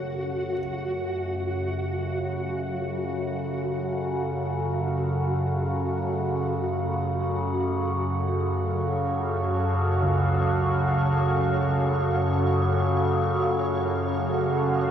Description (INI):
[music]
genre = dark ambient drone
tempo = free time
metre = none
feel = none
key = unclear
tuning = A4 = 440 Hz
[part]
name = deep dark ambient pad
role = sustained chords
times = 0.0-14.9 s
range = F#4 to E#5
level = -28 LUFS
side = right 1 dB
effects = chorus, built-in reverb
[part]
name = dark grand piano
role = arpeggios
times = 0.0-14.9 s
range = C#2 to F#4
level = -34 LUFS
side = right 1 dB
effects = none
[part]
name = overtone-sweeping drone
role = drone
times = 0.0-14.9 s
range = F#2 to C#3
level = -26 LUFS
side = equal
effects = chorus, built-in reverb, phaser
[part]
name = flickering grainy texture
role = texture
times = 0.0-14.9 s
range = F#4 to C#5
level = -35 LUFS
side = left 1 dB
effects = built-in reverb
[sound]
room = wet huge ambient reverb, RT60 7.7 s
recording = none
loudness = -23 LUFS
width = side -9 dB against mid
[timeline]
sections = 0.0-14.9 A section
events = fade-in on synth drone 0.0-14.9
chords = 0.0 F#m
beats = free time